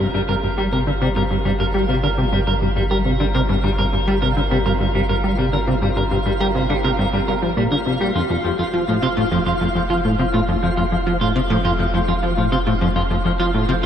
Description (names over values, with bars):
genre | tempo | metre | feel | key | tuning
ambient, sequencer-driven space music | 103 BPM | 4/4 | straight | G minor | A4 = 440 Hz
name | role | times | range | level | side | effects
plucky analog bass | riff | 0.0-13.9 s | F2 to G3 | -19 LUFS | equal | wide subtle chorus, ping-pong delay
warm sub bass | bass | 0.0-13.9 s | F1 to G1 | -24 LUFS | equal | none
twinkling granular texture | texture | 0.0-13.9 s | F4 to F5 | -28 LUFS | equal | built-in reverb
semi-hollow electric guitar | arpeggios | 0.1-13.9 s | F3 to Bb4 | -23 LUFS | right 1 dB | auto-pan, ping-pong delay
room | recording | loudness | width
wet lush hall reverb, RT60 2.8 s | dreamy mix soaked in reverb | -17 LUFS | side -9 dB against mid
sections
0.0-13.9 A section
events
none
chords
0.0 Gm; 8.2 F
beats
0.00 0.58 | 1.16 1.75 2.33 2.91 | 3.49 4.08 4.66 5.24 | 5.82 6.41 6.99 7.57 | 8.15 8.73 9.32 9.90 | 10.48 11.06 11.65 12.23 | 12.81 13.39